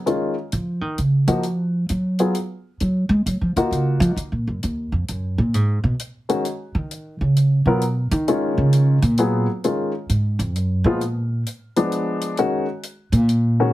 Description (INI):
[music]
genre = jazz piano trio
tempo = 132 BPM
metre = 3/4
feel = swing 65% on 8ths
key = Eb minor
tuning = A4 = 440 Hz
[part]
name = upright bass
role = bass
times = 0.0-13.7 s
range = Eb2 to Ab3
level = -19 LUFS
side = right 1 dB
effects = none
[part]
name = warm upright piano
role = melody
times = 0.1-4.2, 6.3-13.7 s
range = Eb3 to Bb4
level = -21 LUFS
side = left 2 dB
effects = none
[part]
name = hi-hat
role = drums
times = 0.1-13.4 s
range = none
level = -34 LUFS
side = left 3 dB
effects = none
[sound]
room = light reverb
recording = heavily compressed radio sound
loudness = -18 LUFS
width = side -16 dB against mid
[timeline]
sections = 0.1-13.7 A section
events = upright bass solo 0.0-13.7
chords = 0.1 Ebm9; 5.5 Abm; 8.3 Ebm9; 11.0 Bb7b9